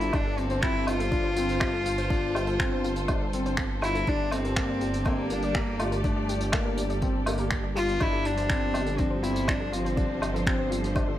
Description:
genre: piano and strings electronica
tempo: 122 BPM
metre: 4/4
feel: straight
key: unclear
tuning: A4 = 440 Hz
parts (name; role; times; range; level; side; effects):
- warm cello; melody; 0.0-10.7 s; A3 to F4; -30 LUFS; left 1 dB; none
- dark studio string section; sustained chords; 0.0-11.2 s; F3 to D5; -35 LUFS; right 1 dB; none
- dark grand piano; riff; 0.0-11.1 s; Bb3 to F4; -33 LUFS; left 2 dB; none
- dark detuned saw bass; bass; 0.0-11.2 s; G1; -31 LUFS; equal; sidechain pumping
- vintage brush drum kit; drums; 0.0-11.1 s; finger snaps, hi-hat, woodblock; -33 LUFS; equal; none
- soft round pluck; arpeggios; 0.1-11.1 s; F4 to D5; -39 LUFS; left 4 dB; chorus, cassette tape, sidechain pumping, tape echo
- electronic kick drum; drums; 0.1-11.1 s; none; -30 LUFS; equal; none
room: light reverb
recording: none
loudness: -24 LUFS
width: side -12 dB against mid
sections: 0.0-11.2 A section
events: none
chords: 0.1 Fadd9/G; 4.1 Gmadd9; 8.0 Fadd9/G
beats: | 0.14 0.63 1.12 1.61 | 2.10 2.60 3.09 3.58 | 4.07 4.56 5.05 5.55 | 6.04 6.53 7.02 7.51 | 8.01 8.50 8.99 9.48 | 9.97 10.46 10.96

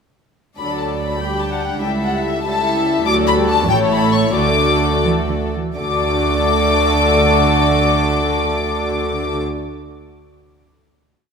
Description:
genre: quick classical-period movement for string orchestra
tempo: 83-98 BPM (dotted quarters)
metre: 6/8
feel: straight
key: D major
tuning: A4 = 441 Hz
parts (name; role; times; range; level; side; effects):
- warm symphonic violin section; melody; 0.6-9.4 s; E5 to D6; -20 LUFS; left 5 dB; none
- warm symphonic violin section; second line; 0.6-9.4 s; G4 to G5; -21 LUFS; left 3 dB; none
- dark studio viola section; accompaniment; 0.6-9.4 s; F#3 to F#4; -21 LUFS; left 1 dB; none
- dark chamber cello section; bass; 0.6-9.4 s; C#2 to E3; -22 LUFS; right 5 dB; none
- rich studio double bass section; bass; 0.6-9.4 s; A1 to D2; -24 LUFS; right 3 dB; none
room: wet scoring stage reverb, RT60 2.0 s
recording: none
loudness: -14 LUFS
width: side -6 dB against mid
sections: 0.6-5.8 A section; 5.8-8.6 final chord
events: slowing down 2.4-5.8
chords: 0.6 D; 1.2 G5/D; 1.8 A7/C#; 3.1 D; 3.7 A; 4.4 D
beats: | 0.59 1.21 | 1.82 2.45 | 3.06 3.69 | 4.36 5.05 | 5.76 6.48 | 7.19 7.91

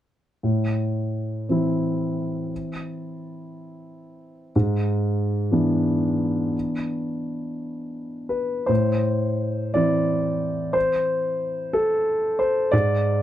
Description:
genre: neoclassical minimalist piano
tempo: 59 BPM (dotted quarters)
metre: 6/8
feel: rubato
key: A minor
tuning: A4 = 439 Hz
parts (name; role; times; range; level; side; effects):
- warm concert grand piano; solo; 0.4-13.2 s; G#2 to D5; -21 LUFS; equal; none
room: little or no reverb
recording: dry, close 1970s-style studio recording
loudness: -21 LUFS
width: side -12 dB against mid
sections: 0.4-8.7 A section; 8.7-13.2 B section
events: none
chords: 0.4 Am; 4.5 E7/G#; 8.7 Am; 12.7 E7/G# (rootless)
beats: | 0.43 1.50 | 2.51 3.53 | 4.54 5.54 | 6.54 7.59 | 8.69 9.73 | 10.75 11.74 | 12.72

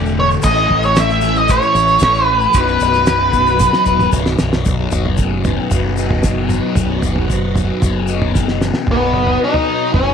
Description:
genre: psychedelic rock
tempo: 114 BPM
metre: 4/4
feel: straight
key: unclear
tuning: A4 = 440 Hz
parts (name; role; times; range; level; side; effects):
- string machine, violins; sustained chords; 0.0-10.1 s; E3 to D#5; -24 LUFS; right 12 dB; ensemble chorus
- fuzz guitar; riff; 0.0-10.1 s; B1 to D#4; -20 LUFS; left 9 dB; distortion, phaser
- growling fingered electric bass; bass; 0.0-10.1 s; B0 to A1; -20 LUFS; right 1 dB; overdrive
- tube shaker; percussion; 0.1-8.7 s; none; -33 LUFS; left 13 dB; none
- octave-fuzz lead guitar; melody; 0.2-4.1, 8.9-10.1 s; B3 to E5; -14 LUFS; equal; distortion, slapback echo
- cloth-damped thuddy drum kit; drums; 0.4-10.1 s; crash cymbal, kick drum, ride cymbal, snare drum, toms; -19 LUFS; right 1 dB; none
room: light reverb, small room ambience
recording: 1960s-style stereo with parts hard left and right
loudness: -12 LUFS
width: side -7 dB against mid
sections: 0.0-4.6 A section; 4.6-8.9 B section; 8.9-10.1 C section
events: drum fill 3.6-4.6, 8.3-8.9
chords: 0.4 A; 2.5 B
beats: | 0.45 0.97 1.50 2.02 | 2.54 3.07 3.60 4.12 | 4.65 5.17 5.70 6.23 | 6.76 7.29 7.82 8.34 | 8.87 9.40 9.93

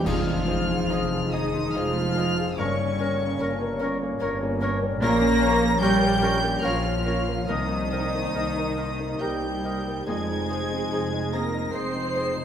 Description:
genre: cinematic, emotional film score for orchestra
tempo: 68-75 BPM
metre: 3/4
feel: rubato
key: F minor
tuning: A4 = 440 Hz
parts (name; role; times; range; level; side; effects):
- mellow hollow concert flute; second line; 0.0-12.3 s; Db5 to C6; -32 LUFS; left 1 dB; none
- warm symphonic violin section; second line; 0.0-12.2 s; Db4 to C5; -40 LUFS; left 3 dB; none
- warm grand piano; accompaniment; 0.0-12.4 s; Bb1 to Db5; -30 LUFS; left 1 dB; none
- concert harp; arpeggios; 0.0-12.4 s; F2 to Db6; -33 LUFS; left 8 dB; none
- warm symphonic violin section; melody; 0.1-12.4 s; Db6 to C7; -32 LUFS; left 1 dB; none
- warm clarinet; second line; 0.1-12.3 s; Ab4 to Bb4; -36 LUFS; equal; none
- warm oboe; second line; 0.1-12.3 s; Db5 to Eb5; -37 LUFS; right 1 dB; none
- dark symphonic viola section; accompaniment; 0.1-12.4 s; Db4 to C5; -32 LUFS; right 3 dB; none
- dark French horn section; sustained chords; 0.1-12.4 s; Ab3 to Eb4; -34 LUFS; left 2 dB; none
- rich symphonic double bass section; bass; 0.1-12.4 s; F1 to C2; -32 LUFS; right 2 dB; none
- warm symphonic cello section; bass; 0.1-12.4 s; Db3 to C4; -30 LUFS; right 2 dB; none
- clash cymbals and concert bass drum; percussion; 0.1-1.7 s; none; -35 LUFS; equal; none
room: wet recital hall reverb, RT60 1.7 s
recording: none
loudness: -22 LUFS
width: side -8 dB against mid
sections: 0.1-12.4 A section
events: band accent 0.1-0.9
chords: 0.1 Fm7; 2.6 Gdim; 5.0 Bbm; 7.5 Cm7; 10.1 Fm7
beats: | 0.06 0.91 1.75 | 2.58 3.40 4.21 | 5.01 5.81 6.63 | 7.48 8.35 9.21 | 10.07 10.92 11.74

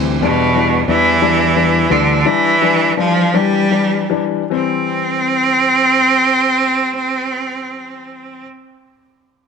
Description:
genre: pop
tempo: 49-60 BPM (dotted quarters)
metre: 6/8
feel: straight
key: C major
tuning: A4 = 441 Hz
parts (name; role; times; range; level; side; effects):
- dark upright piano; accompaniment; 0.0-8.4 s; E3 to D4; -19 LUFS; left 12 dB; none
- fretless electric bass; bass; 0.0-2.2 s; D2 to E2; -18 LUFS; right 2 dB; none
- bright cello; melody; 0.2-8.4 s; B2 to C4; -14 LUFS; right 2 dB; none
room: moderate plate reverb, RT60 1.9 s, studio ambience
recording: 1960s-style stereo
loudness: -12 LUFS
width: side -6 dB against mid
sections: 0.0-4.5 A section; 4.5-9.4 B section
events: slowing down 0.2-4.5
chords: 0.2 Em7; 4.5 C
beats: | 0.20 1.21 | 2.25 3.35 | 4.52 5.75 | 6.97 8.19

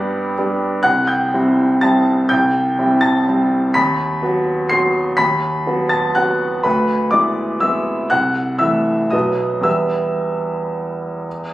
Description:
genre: classical, piano waltz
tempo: 107-132 BPM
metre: 3/4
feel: rubato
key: E minor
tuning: A4 = 440 Hz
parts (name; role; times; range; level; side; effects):
- clear baby grand piano; solo; 0.0-11.5 s; B1 to C7; -15 LUFS; equal; none
room: wet large studio reverb, RT60 1.3 s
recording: recorded on a phone in the room, club ambience, compression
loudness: -15 LUFS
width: side -16 dB against mid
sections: 0.0-11.5 A section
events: none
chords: 0.0 G; 0.9 C; 3.8 B/D#; 6.7 E7/D; 8.1 Am/C; 9.1 B; 9.7 Em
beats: 0.38 | 0.85 1.34 1.84 | 2.32 2.79 3.28 | 3.76 4.22 4.71 | 5.19 5.66 6.16 | 6.65 7.13 7.63 | 8.12 8.61 9.13 | 9.65 10.17 10.72 | 11.26

